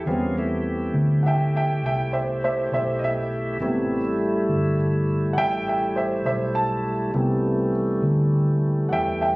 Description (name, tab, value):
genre	slow blues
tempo	68 BPM (dotted quarters)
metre	12/8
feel	straight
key	A minor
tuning	A4 = 441 Hz
part	warm upright piano	accompaniment	0.0-9.4 s	C3 to A5	-25 LUFS	right 1 dB	none
part	bright tonewheel organ	sustained chords	0.0-9.4 s	E3 to G#4	-25 LUFS	equal	slow rotary speaker, overdrive
part	vintage muted fingered electric bass	bass	0.0-9.4 s	G1 to E2	-25 LUFS	equal	none
room	light reverb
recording	recorded on a phone in the room, club reverb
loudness	-20 LUFS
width	side -23 dB against mid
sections	0.0-9.4 A section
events	upright piano solo 0.0-9.4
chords	0.0 Am7